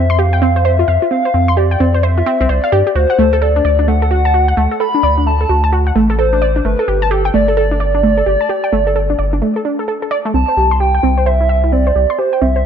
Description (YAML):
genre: IDM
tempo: 130 BPM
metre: 4/4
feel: swing 62% on 16ths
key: C major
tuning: A4 = 437 Hz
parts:
  - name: warbly nostalgic lead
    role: melody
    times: 0.0-12.7 s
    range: A4 to B5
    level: -16 LUFS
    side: left 1 dB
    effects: wide subtle chorus, ping-pong delay
  - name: warbly dusty pluck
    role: arpeggios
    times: 0.0-12.6 s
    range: A3 to C6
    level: -16 LUFS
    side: right 2 dB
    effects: chorus, ping-pong delay
  - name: round analog bass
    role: bass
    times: 0.0-12.7 s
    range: G1 to G2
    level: -15 LUFS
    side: equal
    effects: tube saturation
room: light reverb, digital ambience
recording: dark, warm production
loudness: -11 LUFS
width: side -8 dB against mid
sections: 0.0-12.7 A section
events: break 9.4-10.3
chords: 0.0 Fsus2; 3.0 D; 6.6 Gsus2; 10.3 C